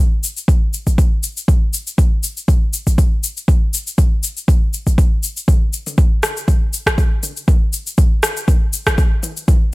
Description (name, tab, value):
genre	house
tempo	120 BPM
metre	4/4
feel	swing 55% on 16ths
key	none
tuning	none
part	afro-pop drum kit	drums	0.2-9.6 s	rim click, shaker, toms	-21 LUFS	left 2 dB	high-pass filter on perc, high-pass filter on snare, high-pass filter on toms, high-pass filter on room
part	electronic kick drum	drums	0.5-9.6 s	none	-13 LUFS	equal	none
room	little or no reverb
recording	none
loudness	-14 LUFS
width	side -22 dB against mid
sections	0.0-5.5 A section; 5.5-9.7 B section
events	build-up 5.5-9.7; drum fill 5.5-9.7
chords	none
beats	0.48 0.98 | 1.48 1.98 2.48 2.98 | 3.48 3.98 4.48 4.98 | 5.48 5.98 6.48 6.98 | 7.48 7.98 8.48 8.98 | 9.48